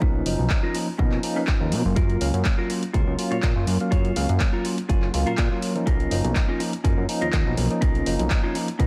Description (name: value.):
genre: filtered disco house.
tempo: 123 BPM.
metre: 4/4.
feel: swing 53% on 16ths.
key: unclear.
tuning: A4 = 440 Hz.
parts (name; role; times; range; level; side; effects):
bell-like tine electric piano; accompaniment; 0.0-8.9 s; E#3 to E#5; -30 LUFS; equal; phaser, sidechain pumping, low-pass filter.
clean electric guitar; riff; 0.0-8.9 s; C#4 to C#5; -33 LUFS; equal; vintage 12-bit sampler grit, sidechain pumping, low-pass filter.
fat analog bass; bass; 0.0-8.9 s; F#1 to B2; -27 LUFS; equal; sidechain pumping, low-pass filter.
electronic kick drum; drums; 0.0-8.9 s; none; -25 LUFS; equal; none.
punchy analog drum machine; drums; 0.3-8.9 s; handclaps, hi-hat; -34 LUFS; equal; sidechain pumping on hats.
room: light reverb.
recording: none.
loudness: -23 LUFS.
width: mono.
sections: 0.0-8.9 A section.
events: none.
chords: 0.0 Bmaj9#11; 2.0 F#maj7; 5.9 Bmaj9#11.